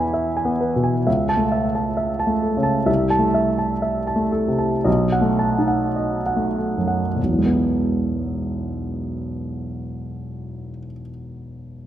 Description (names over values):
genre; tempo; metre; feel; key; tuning
classical, romantic character piece for solo piano; 48-67 BPM; 4/4; rubato; E major; A4 = 436 Hz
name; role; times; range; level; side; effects
warm grand piano; solo; 0.0-11.9 s; E1 to B5; -19 LUFS; equal; none
room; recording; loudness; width
moderate scoring stage reverb, RT60 1.8 s; none; -18 LUFS; side -11 dB against mid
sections
0.0-7.2 A section; 7.2-11.6 B section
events
slowing down 0.0-7.2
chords
0.0 E; 1.1 A/C#; 2.9 Am/C; 4.9 B7; 7.2 E